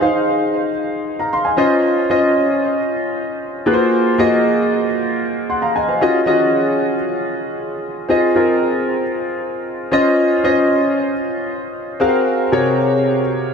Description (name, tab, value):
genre	pop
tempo	115 BPM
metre	4/4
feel	straight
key	unclear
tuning	A4 = 440 Hz
part	warm concert grand piano	solo	0.0-13.5 s	C3 to C6	-15 LUFS	equal	analog chorus, diffuse ambient delay
room	wet plate reverb, RT60 2.8 s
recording	dreamy mix soaked in reverb, faint mains hum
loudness	-15 LUFS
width	side -6 dB against mid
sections	0.0-13.5 A section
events	none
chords	0.0 Fm7; 1.6 Dbmaj9; 3.7 Gbmaj9#11; 6.0 Ebm11; 8.1 Fm7; 9.9 Dbmaj9; 12.0 Gbmaj9#11